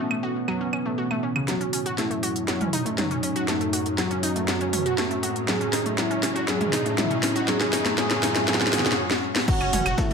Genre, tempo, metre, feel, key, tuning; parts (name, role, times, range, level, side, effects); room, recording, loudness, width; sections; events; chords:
melodic techno; 120 BPM; 4/4; straight; F# dorian; A4 = 439 Hz
expressive synth lead; melody; 0.0-10.1 s; B3 to G#4; -28 LUFS; right 1 dB; chorus, cassette tape, sidechain pumping, ping-pong delay
evolving wavetable pad; sustained chords; 0.0-10.1 s; A2 to F#4; -31 LUFS; equal; chorus, built-in reverb, sidechain pumping
wide unison pluck; arpeggios; 0.0-10.1 s; C#3 to F#5; -29 LUFS; equal; cassette tape, sidechain pumping, ping-pong delay
techno drum kit; drums; 0.1-10.1 s; claves, crash cymbal, hi-hat, snare drum, toms; -26 LUFS; equal
bowed-like drone; drone; 1.9-10.1 s; F#2; -37 LUFS; left 2 dB; built-in reverb, phaser, sidechain pumping
riser; sound effects; 3.4-9.0 s; -34 LUFS; right 1 dB
crunchy breakbeat drum kit; drums; 9.5-10.1 s; hi-hat, snare drum; -40 LUFS; equal
electronic kick drum; drums; 9.5-10.1 s; -24 LUFS; left 1 dB
round analog bass; bass; 9.6-9.9 s; F#1; -30 LUFS; left 1 dB; sidechain pumping
wet digital room reverb, RT60 0.9 s; -22 LUFS; side -5 dB against mid
0.0-1.5 A section; 1.5-9.5 B section
build-up 1.5-9.5; drum fill 1.5-9.0, 9.1-9.5; filter sweep on analog synth lead 1.5-9.5; break 9.0-9.5
0.0 Aadd9; 1.5 F#madd9